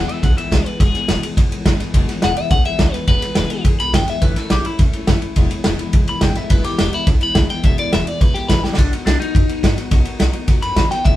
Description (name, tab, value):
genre	rockabilly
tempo	211 BPM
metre	4/4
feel	straight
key	E major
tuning	A4 = 440 Hz
part	electric guitar at the edge of break-up	melody	0.0-11.2 s	D4 to B5	-22 LUFS	left 2 dB	phaser
part	picked steel-string acoustic guitar	accompaniment	0.0-11.2 s	E2 to G#4	-25 LUFS	left 3 dB	none
part	upright bass	bass	0.0-11.1 s	E1 to G#2	-22 LUFS	equal	none
part	vintage drum kit	drums	0.1-11.1 s	kick drum, ride cymbal, snare drum, splash cymbal	-16 LUFS	equal	none
room	moderate studio reverb, RT60 0.6 s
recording	band playing live in one room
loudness	-14 LUFS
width	side -14 dB against mid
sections	0.0-11.2 A section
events	drum fill 8.6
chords	0.0 E; 4.2 A; 5.4 E; 8.8 B